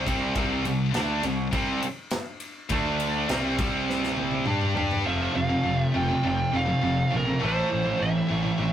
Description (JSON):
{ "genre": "heavy metal", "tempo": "102 BPM", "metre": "4/4", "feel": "straight", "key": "unclear", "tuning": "A4 = 444 Hz", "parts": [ { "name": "distorted electric guitar", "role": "riff", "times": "0.0-8.7 s", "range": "A2 to G4", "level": "-33 LUFS", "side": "left 1 dB", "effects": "overdrive" }, { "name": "heavy high-gain guitar", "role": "riff", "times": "0.0-8.7 s", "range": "F2 to G4", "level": "-31 LUFS", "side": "left 7 dB", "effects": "distortion" }, { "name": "scooped high-gain guitar", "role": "riff", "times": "0.0-8.7 s", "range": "F2 to G4", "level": "-27 LUFS", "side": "right 3 dB", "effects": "distortion" }, { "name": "fuzz picked electric bass", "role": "bass", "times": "0.0-8.7 s", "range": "F1 to G2", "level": "-31 LUFS", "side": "left 1 dB", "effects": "overdrive" }, { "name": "modern studio drum kit", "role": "drums", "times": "0.1-5.1 s", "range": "kick drum, ride cymbal, snare drum, toms", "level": "-31 LUFS", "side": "left 1 dB", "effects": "none" }, { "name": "high-gain lead guitar", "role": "melody", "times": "5.1-8.7 s", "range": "Bb4 to G5", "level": "-28 LUFS", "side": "right 1 dB", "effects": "distortion" } ], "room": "light reverb", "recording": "rough rehearsal-room recording", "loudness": "-23 LUFS", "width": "side -10 dB against mid", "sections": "0.0-5.1 A section; 5.1-8.7 B section", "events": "drum fill 3.9-5.1", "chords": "0.4 C5; 2.7 D5; 3.3 C5; 5.1 F; 7.4 Am", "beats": "| 0.36 0.95 1.54 2.13 | 2.71 3.30 3.89 4.48 | 5.07 5.66 6.24 6.83 | 7.42 8.01 8.60" }